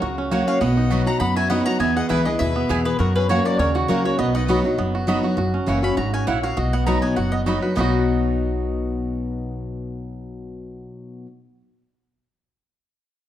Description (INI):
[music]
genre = bluegrass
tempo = 201 BPM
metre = 4/4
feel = swing 53% on 8ths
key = B major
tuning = A4 = 440 Hz
[part]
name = mandolin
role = melody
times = 0.0-10.8 s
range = F#4 to B5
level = -27 LUFS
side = left 2 dB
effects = none
[part]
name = clear fiddle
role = second line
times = 0.0-4.5 s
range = D#4 to F#5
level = -32 LUFS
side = left 5 dB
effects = none
[part]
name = picked steel-string acoustic guitar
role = accompaniment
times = 0.0-11.3 s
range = E2 to F#4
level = -23 LUFS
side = left 2 dB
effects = none
[part]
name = bluegrass banjo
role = arpeggios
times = 0.0-10.9 s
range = F#3 to B4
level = -25 LUFS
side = right 4 dB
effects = none
[part]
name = upright bass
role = bass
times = 0.0-10.8 s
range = F#1 to F#2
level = -25 LUFS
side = equal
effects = none
[part]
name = mandolin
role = stabs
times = 0.3-11.3 s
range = A#3 to B5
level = -31 LUFS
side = right 4 dB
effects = none
[sound]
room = wet large studio reverb, RT60 1.3 s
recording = dark, warm production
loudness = -18 LUFS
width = side -11 dB against mid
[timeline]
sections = 0.0-5.4 A section; 5.4-7.8 B section; 7.8-10.2 C section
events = none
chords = 0.0 F#; 0.6 B; 1.8 E; 3.0 F#; 4.2 B; 5.4 F#7; 6.6 B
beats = 0.02 0.32 | 0.62 0.92 1.21 1.51 | 1.81 2.11 2.40 2.70 | 3.00 3.30 3.59 3.89 | 4.19 4.49 4.79 5.08 | 5.38 5.68 5.98 6.28 | 6.57 6.87 7.17 7.47 | 7.77 8.07 8.37 8.66 | 8.96 9.26 9.56 9.86